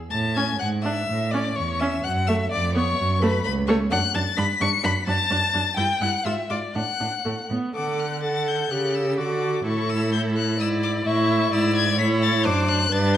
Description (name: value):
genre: quick classical-period movement for string quartet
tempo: 127 BPM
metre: 2/4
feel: rubato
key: A major, D major from 3.9 s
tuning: A4 = 443 Hz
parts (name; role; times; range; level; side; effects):
- rich violin; melody; 0.1-13.2 s; B5 to C#7; -27 LUFS; left 7 dB; none
- warm violin; second line; 0.1-13.2 s; A4 to C#6; -27 LUFS; left 3 dB; none
- rich cello; bass; 0.1-13.2 s; C#2 to D3; -25 LUFS; right 2 dB; none
- rich viola; accompaniment; 0.4-13.2 s; A3 to A4; -26 LUFS; right 1 dB; none
room: wet recital hall reverb, RT60 1.3 s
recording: none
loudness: -20 LUFS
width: side -11 dB against mid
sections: 0.1-7.8 A section; 7.8-13.2 B section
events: none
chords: 0.1 A; 0.6 E7/G#; 1.1 A; 2.0 F#m; 2.5 C#7/E#; 3.0 F#m; 3.9 D/F#; 4.4 G; 4.8 D/F#; 5.8 Em/G; 6.3 E7b9; 6.8 D; 7.3 F#madd11; 7.8 D; 8.7 A7/C#; 9.2 D; 9.7 A5; 10.6 E7/G#; 11.1 A; 11.5 E7/G#; 12.0 A; 12.5 D7/F#